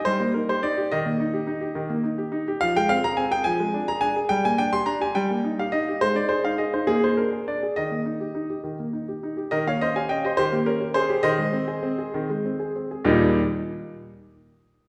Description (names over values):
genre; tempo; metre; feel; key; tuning
classical-period piano sonatina; 70 BPM (dotted quarters); 6/8; straight; Eb major; A4 = 440 Hz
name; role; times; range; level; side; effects
warm baby grand piano; solo; 0.0-13.4 s; Eb2 to C6; -24 LUFS; equal; none
room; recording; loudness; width
wet recital hall reverb, RT60 1.6 s; heard from further back in the room; -24 LUFS; mono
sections
0.0-9.5 A section; 9.5-13.0 B section; 13.0-14.9 C section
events
slowing down 8.6-13.0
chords
0.0 Eb/G; 0.9 Eb; 2.6 Fm; 3.4 Ddim/F; 4.3 Gm; 5.2 Eb/G; 6.0 Ab5; 6.9 Bb7; 7.7 Eb; 9.5 Eb7; 11.2 Ab/Eb; 13.0 Eb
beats
0.06 | 0.90 1.75 | 2.60 3.44 | 4.30 5.15 | 6.00 6.87 | 7.75 8.63 | 9.51 10.37 | 11.23 12.12 | 13.05